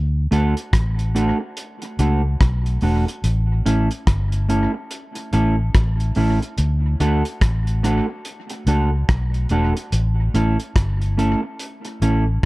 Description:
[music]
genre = roots reggae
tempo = 72 BPM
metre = 4/4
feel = swing 60% on 16ths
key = D major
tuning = A4 = 440 Hz
[part]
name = vintage muted fingered electric bass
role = bass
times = 0.0-12.4 s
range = E1 to D2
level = -19 LUFS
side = equal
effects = none
[part]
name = mellow electric guitar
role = accompaniment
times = 0.3-12.2 s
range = A3 to A4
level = -23 LUFS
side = right 2 dB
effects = tape echo
[part]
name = cloth-damped thuddy drum kit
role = drums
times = 0.3-12.2 s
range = hi-hat, kick drum, rim click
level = -20 LUFS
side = equal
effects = none
[sound]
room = light reverb, small room ambience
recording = dark, warm production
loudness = -17 LUFS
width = side -20 dB against mid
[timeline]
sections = 0.0-12.5 A section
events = none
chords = 0.0 D; 3.2 A; 6.6 D; 9.9 A

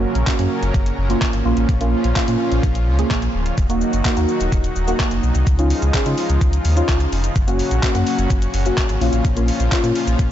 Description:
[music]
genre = dance-pop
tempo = 127 BPM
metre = 4/4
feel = straight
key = Bb minor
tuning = A4 = 439 Hz
[part]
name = deep mellow chord stab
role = accompaniment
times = 0.0-10.3 s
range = Bb3 to Ab4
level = -22 LUFS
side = equal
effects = chorus, sidechain pumping
[part]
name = supersaw pad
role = sustained chords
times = 0.0-10.3 s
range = Bb2 to Bb4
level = -26 LUFS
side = equal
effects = sidechain pumping
[part]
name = sub bass with octave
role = bass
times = 0.0-10.3 s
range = D1 to Db3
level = -19 LUFS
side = equal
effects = sidechain pumping
[part]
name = detuned 8-bit digital drum machine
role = drums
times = 0.2-10.3 s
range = handclaps, hi-hat, kick drum, shaker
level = -21 LUFS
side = equal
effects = overdrive
[sound]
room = light reverb, digital ambience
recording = blown-out, overdriven recording, overdrive, nothing above 7.9 kHz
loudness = -16 LUFS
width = side -11 dB against mid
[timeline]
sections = 0.0-10.3 A section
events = none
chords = 0.0 Gb; 1.5 Bbm; 3.6 Ebm; 5.5 Dbadd9; 7.4 Gb; 9.0 Bbm

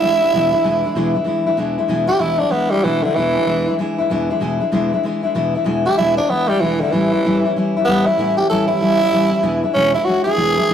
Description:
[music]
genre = rock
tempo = 191 BPM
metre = 4/4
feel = swing 64% on 8ths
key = E mixolydian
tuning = A4 = 440 Hz
[part]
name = growling tenor saxophone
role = melody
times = 0.0-3.8, 5.9-10.7 s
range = D3 to A4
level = -17 LUFS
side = right 2 dB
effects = analog delay
[part]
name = picked steel-string acoustic guitar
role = accompaniment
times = 0.0-10.7 s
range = E2 to E4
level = -18 LUFS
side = left 2 dB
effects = none
[sound]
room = wet stone room reverb, RT60 1.1 s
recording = rough rehearsal-room recording, warm saturation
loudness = -15 LUFS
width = side -9 dB against mid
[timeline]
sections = 0.0-1.9 A section; 1.9-10.7 B section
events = tenor saxophone solo 1.9-10.7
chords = 0.0 E7; 6.9 A7; 9.4 E7

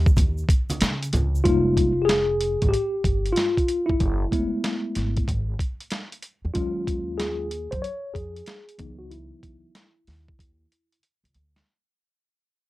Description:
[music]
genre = hip hop, jazz-hop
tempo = 94 BPM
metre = 4/4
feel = swing 65% on 16ths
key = unclear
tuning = A4 = 440 Hz
[part]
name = upright bass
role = bass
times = 0.0-11.6 s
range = F1 to Db3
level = -26 LUFS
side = equal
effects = none
[part]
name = boom bap sampler-style drum kit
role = drums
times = 0.1-11.7 s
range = hi-hat, kick drum, snare drum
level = -24 LUFS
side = equal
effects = none
[part]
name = egg shaker and congas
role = percussion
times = 0.1-1.4 s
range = none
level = -31 LUFS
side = right 2 dB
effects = none
[part]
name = mellow tine electric piano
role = accompaniment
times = 1.4-11.0 s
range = Fb3 to Db5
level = -24 LUFS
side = left 1 dB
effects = medium stereo tremolo, low-pass filter
[sound]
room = light reverb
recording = none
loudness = -22 LUFS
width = side -17 dB against mid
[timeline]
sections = 0.0-1.4 A section; 1.4-11.7 B section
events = fade-out 1.4-11.7; tine electric piano solo 1.4-11.7; filter sweep on tine electric piano 1.4-11.7; drum fill 10.4-11.7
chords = 0.0 Dbsus2; 1.4 Fm11; 4.0 Gbm11; 6.6 Ebm11; 8.8 Dbm11

